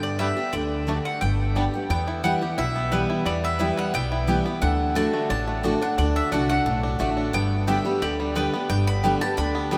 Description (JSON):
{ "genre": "bluegrass", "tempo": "176 BPM", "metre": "4/4", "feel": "straight", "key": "G major", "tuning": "A4 = 441 Hz", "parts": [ { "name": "mandolin", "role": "melody", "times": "0.0-9.8 s", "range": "B4 to B5", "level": "-30 LUFS", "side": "equal", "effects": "tape echo" }, { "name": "picked steel-string acoustic guitar", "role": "accompaniment", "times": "0.0-9.8 s", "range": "E2 to G4", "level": "-28 LUFS", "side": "equal", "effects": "none" }, { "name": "upright bass", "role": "bass", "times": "0.0-9.8 s", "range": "G1 to G2", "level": "-29 LUFS", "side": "equal", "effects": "none" }, { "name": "bluegrass banjo", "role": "melody", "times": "0.2-9.8 s", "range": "G3 to G4", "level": "-34 LUFS", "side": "equal", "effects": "none" }, { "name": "mandolin", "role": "stabs", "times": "0.2-9.8 s", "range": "A3 to A5", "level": "-35 LUFS", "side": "equal", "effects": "none" } ], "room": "wet huge ambient reverb, RT60 8.0 s", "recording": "in a vast, echoing space", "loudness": "-24 LUFS", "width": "mono", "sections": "0.0-1.9 A section; 1.9-9.8 B section", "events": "none", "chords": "0.0 G; 0.5 D; 1.2 Gadd9; 1.9 Em; 4.6 D; 7.3 G", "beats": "0.19 | 0.53 0.88 1.22 1.56 | 1.90 2.24 2.58 2.92 | 3.26 3.60 3.94 4.28 | 4.62 4.96 5.30 5.64 | 5.98 6.32 6.66 7.00 | 7.34 7.68 8.02 8.36 | 8.70 9.04 9.38 9.72" }